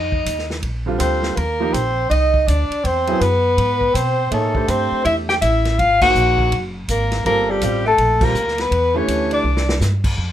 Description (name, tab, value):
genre	jazz, small-group swing and bop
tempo	164 BPM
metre	4/4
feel	swing 63% on 8ths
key	unclear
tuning	A4 = 439 Hz
part	warm soprano saxophone	melody	0.0-9.8 s	G4 to G5	-19 LUFS	left 3 dB	none
part	breathy tenor saxophone	second line	0.0-9.8 s	G3 to G4	-23 LUFS	right 3 dB	none
part	upright bass	bass	0.0-10.3 s	F#1 to B2	-21 LUFS	equal	none
part	vintage drum kit	drums	0.1-10.3 s	crash cymbal, hi-hat, kick drum, ride cymbal, snare drum	-26 LUFS	equal	none
part	clear grand piano	accompaniment	0.9-9.4 s	D3 to C#5	-24 LUFS	right 3 dB	none
room	moderate club reverb, RT60 0.5 s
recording	none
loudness	-15 LUFS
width	side -11 dB against mid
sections	0.0-10.2 A section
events	band accent 6.0, 8.2; drum fill 9.4-9.8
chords	0.0 Ebsus2; 0.6 Bb; 1.4 Eb5; 2.8 E; 4.3 Am7; 5.8 G#9; 7.2 Gm9; 8.7 Em7; 9.4 Csus2